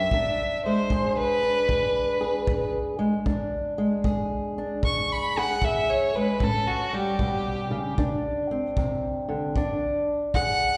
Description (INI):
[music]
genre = acoustic country blues, solo or duo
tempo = 76 BPM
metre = 4/4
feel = swing 66% on 8ths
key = unclear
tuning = A4 = 440 Hz
[part]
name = dark fiddle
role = melody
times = 0.0-10.8 s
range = F#4 to C#6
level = -27 LUFS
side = equal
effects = slapback echo
[part]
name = fingerpicked old ladder-braced acoustic guitar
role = accompaniment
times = 0.0-10.8 s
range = E2 to G#4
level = -29 LUFS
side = equal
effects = slapback echo
[part]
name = kick drum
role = drums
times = 0.1-10.6 s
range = none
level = -32 LUFS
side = equal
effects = none
[sound]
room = light reverb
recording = live gig heard through the venue's PA, recital hall reverb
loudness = -26 LUFS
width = mono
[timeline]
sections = 0.0-10.8 A section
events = fiddle solo 0.0-10.8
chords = 0.1 E7; 6.4 A7; 8.0 Csus2; 9.6 E7